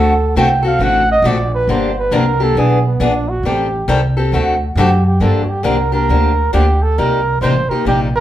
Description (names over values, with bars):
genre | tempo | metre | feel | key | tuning
acoustic string swing (jazz manouche) | 136 BPM | 4/4 | swing 63% on 8ths | G minor | A4 = 440 Hz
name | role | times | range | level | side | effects
breathy flugelhorn | melody | 0.0-8.2 s | B3 to G5 | -17 LUFS | right 2 dB | none
picked steel-string acoustic guitar | accompaniment | 0.0-8.1 s | C3 to A4 | -17 LUFS | left 3 dB | none
upright bass | bass | 0.0-8.2 s | G1 to G2 | -16 LUFS | right 1 dB | none
room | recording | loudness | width
wet club reverb, RT60 0.8 s | heard from further back in the room | -12 LUFS | side -12 dB against mid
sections
0.0-5.2 A section; 5.2-8.2 B section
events
flugelhorn solo 0.0-5.2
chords
0.0 D7; 1.7 Gm7; 2.6 E7; 3.4 Am7b5; 4.3 D7; 5.2 Gm7; 7.0 Cm7